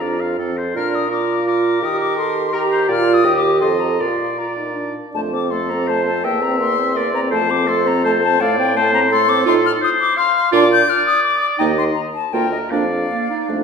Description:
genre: quick classical-period movement for wind quintet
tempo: 152-171 BPM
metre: 3/4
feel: rubato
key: Bb major, F major from 5.2 s, Bb major from 9.5 s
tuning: A4 = 440 Hz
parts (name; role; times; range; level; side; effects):
- silver concert flute; melody; 0.0-13.6 s; Eb5 to G6; -20 LUFS; left 6 dB; none
- clear oboe; second line; 0.0-13.6 s; A4 to F5; -21 LUFS; left 2 dB; none
- warm French horn; accompaniment; 0.0-13.6 s; A3 to A4; -23 LUFS; right 1 dB; none
- warm clarinet; accompaniment; 0.0-13.6 s; Bb3 to C5; -22 LUFS; right 6 dB; none
- mellow bassoon; bass; 0.0-13.6 s; D2 to Eb3; -22 LUFS; right 3 dB; none
room: wet recital hall reverb, RT60 1.4 s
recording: none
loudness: -15 LUFS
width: side -6 dB against mid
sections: 0.0-5.2 A section; 5.2-13.6 B section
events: none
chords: 0.4 F; 0.8 Bb; 1.8 Eb; 2.9 Bb; 3.3 Eb; 3.6 F7; 4.0 Bb; 5.2 F; 6.2 C7/E; 7.3 F; 8.4 Amadd11; 9.5 F7/A; 10.5 Bb; 11.6 Eb5; 12.3 Bb/D; 12.7 Bb/F

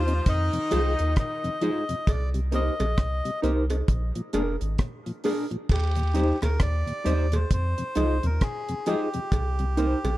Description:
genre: roots reggae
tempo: 66 BPM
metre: 4/4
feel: swing 60% on 16ths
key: Eb major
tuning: A4 = 440 Hz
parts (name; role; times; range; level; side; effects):
- melodica; melody; 0.0-10.2 s; G4 to Eb5; -32 LUFS; equal; none
- clear horn section; second line; 0.0-1.6 s; Eb3 to F4; -33 LUFS; left 3 dB; none
- mellow electric guitar; accompaniment; 0.0-10.0 s; D4 to C5; -32 LUFS; right 4 dB; wide subtle chorus
- soft dub sub bass; bass; 0.0-10.2 s; F1 to F2; -25 LUFS; equal; none
- mellow tonewheel organ; accompaniment; 0.1-10.1 s; Eb2 to Eb4; -32 LUFS; left 1 dB; slow rotary speaker
- mellow reed electric piano; stabs; 0.1-10.0 s; D4 to Eb5; -32 LUFS; left 3 dB; fast tremolo
- deep reggae drum kit; drums; 0.1-10.2 s; crash cymbal, hi-hat, kick drum, rim click; -26 LUFS; equal; none
- cowbell and jawbone-type rattle; percussion; 0.7-10.2 s; none; -35 LUFS; right 3 dB; none
room: studio ambience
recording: dark, warm production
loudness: -23 LUFS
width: side -16 dB against mid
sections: 0.0-5.7 A section; 5.7-10.2 B section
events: none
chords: 0.3 Fm7; 2.1 Cm7; 3.9 Bb7; 5.7 Eb6; 7.5 Fm7; 9.3 Cm7

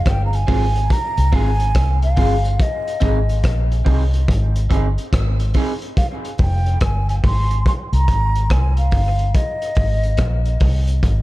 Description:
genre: dub reggae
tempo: 71 BPM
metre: 4/4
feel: swing 63% on 16ths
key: F minor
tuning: A4 = 441 Hz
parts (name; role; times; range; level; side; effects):
- mellow hollow concert flute; melody; 0.0-10.6 s; Eb5 to C6; -25 LUFS; equal; dub echo
- vintage muted fingered electric bass; bass; 0.0-11.2 s; F1 to C2; -17 LUFS; equal; none
- crunchy breakbeat drum kit; drums; 0.1-11.2 s; hi-hat, kick drum, rim click; -20 LUFS; equal; none
- electric guitar through a small old amp; accompaniment; 0.5-5.7 s; C4 to Ab4; -27 LUFS; right 2 dB; phaser, high-pass filter, dub echo
room: small room ambience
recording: dark, warm production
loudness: -15 LUFS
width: side -18 dB against mid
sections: 0.0-11.2 A section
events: none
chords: 0.0 Fm; 2.6 Ab; 6.0 Fm; 9.3 Ab

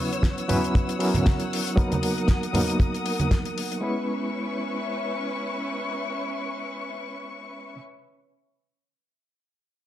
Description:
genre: nu-disco, nu disco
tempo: 117 BPM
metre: 4/4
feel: swing 56% on 16ths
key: C# dorian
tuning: A4 = 440 Hz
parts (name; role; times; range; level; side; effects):
- barky reed electric piano; accompaniment; 0.0-7.8 s; F#3 to B4; -28 LUFS; equal; overdrive, fast tremolo, sidechain pumping, low-pass filter, digital delay
- warm studio string section; sustained chords; 0.0-7.8 s; C#4 to E6; -31 LUFS; left 2 dB; sidechain pumping
- damped 70s drum kit; drums; 0.1-3.8 s; hi-hat, snare drum; -32 LUFS; left 2 dB; none
- kick drum; drums; 0.2-3.4 s; none; -21 LUFS; equal; none
- congas; percussion; 0.5-3.3 s; none; -28 LUFS; right 2 dB; none
room: light reverb, small room ambience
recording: dark, warm production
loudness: -23 LUFS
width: side -12 dB against mid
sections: 0.0-3.8 A section; 3.8-7.9 B section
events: filter sweep on reed electric piano 0.0-3.8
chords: 0.0 F#7sus4; 1.8 Bmaj7; 3.8 C#m7

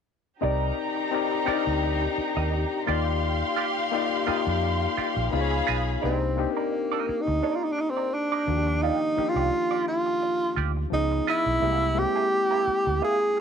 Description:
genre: soul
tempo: 86 BPM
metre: 4/4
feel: swing 54% on 16ths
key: C minor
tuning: A4 = 439 Hz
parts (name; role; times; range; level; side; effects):
- warm studio violin section; second line; 0.4-6.0 s; Eb4 to C6; -28 LUFS; equal; none
- overdriven reed electric piano; accompaniment; 0.4-13.4 s; Eb3 to D5; -29 LUFS; left 13 dB; none
- semi-hollow electric guitar; riff; 0.4-13.4 s; Bb3 to Eb5; -32 LUFS; right 14 dB; wah, wide subtle chorus
- vintage muted fingered electric bass; bass; 0.4-13.0 s; Bb1 to F2; -28 LUFS; right 1 dB; none
- breathy tenor saxophone; melody; 6.0-13.4 s; Bb3 to Ab4; -24 LUFS; right 2 dB; none
room: light reverb, small room ambience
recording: 1960s-style stereo with parts hard left and right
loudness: -23 LUFS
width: side -7 dB against mid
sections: 0.4-6.0 A section; 6.0-13.4 B section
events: none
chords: 0.4 Cm9; 2.9 Ebmaj9; 5.3 Db9; 6.0 Cm9; 8.5 Ebmaj9; 10.9 Db9; 11.6 C7b13

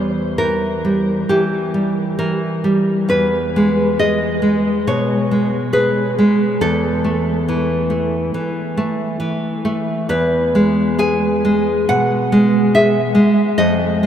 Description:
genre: romantic piece for solo classical guitar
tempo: 68 BPM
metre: 4/4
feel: rubato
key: E major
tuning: A4 = 439 Hz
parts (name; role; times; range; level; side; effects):
- nylon-string guitar; solo; 0.0-14.1 s; E2 to G#5; -14 LUFS; equal; none
room: wet huge ambient reverb, RT60 7.1 s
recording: in a vast, echoing space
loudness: -14 LUFS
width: side -9 dB against mid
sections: 0.0-14.1 A section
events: none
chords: 0.0 Edim; 3.1 E; 6.6 A5/E; 10.1 E

